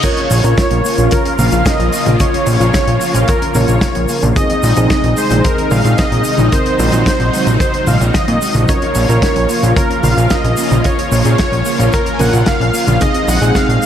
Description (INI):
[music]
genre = synthwave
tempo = 111 BPM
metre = 4/4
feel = straight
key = Bb minor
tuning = A4 = 439 Hz
[part]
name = soft supersaw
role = melody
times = 0.0-13.9 s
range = Bb4 to Ab5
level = -18 LUFS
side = right 1 dB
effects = vintage 12-bit sampler grit, tape echo
[part]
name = analog string pad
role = sustained chords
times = 0.0-13.9 s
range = C3 to F4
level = -19 LUFS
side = equal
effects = ensemble chorus, sidechain pumping
[part]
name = thumb-piano-like synth pluck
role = arpeggios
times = 0.0-13.9 s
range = Ab3 to F4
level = -25 LUFS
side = left 1 dB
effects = none
[part]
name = mellow FM electric piano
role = stabs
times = 0.0-13.9 s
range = C4 to Db5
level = -21 LUFS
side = equal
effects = chorus, tape echo
[part]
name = kick drum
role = drums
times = 0.0-13.7 s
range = none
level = -17 LUFS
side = equal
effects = none
[part]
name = warm soul drum kit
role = drums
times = 0.0-13.9 s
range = crash cymbal, hi-hat, shaker, snare drum, toms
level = -20 LUFS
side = left 1 dB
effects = none
[part]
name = fat analog bass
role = bass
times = 0.3-13.8 s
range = Bb1 to Bb2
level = -13 LUFS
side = equal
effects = sidechain pumping
[sound]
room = moderate lush hall reverb, RT60 2.1 s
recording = dreamy mix soaked in reverb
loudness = -11 LUFS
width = side -9 dB against mid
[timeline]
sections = 0.0-13.9 A section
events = none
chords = 0.0 Bbm; 4.4 Ab/Bb; 8.7 Bbm; 13.0 Ab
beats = | 0.04 0.58 1.12 1.66 | 2.20 2.74 3.28 3.82 | 4.36 4.90 5.44 5.98 | 6.52 7.06 7.61 8.15 | 8.69 9.23 9.77 10.31 | 10.85 11.39 11.93 12.47 | 13.01 13.55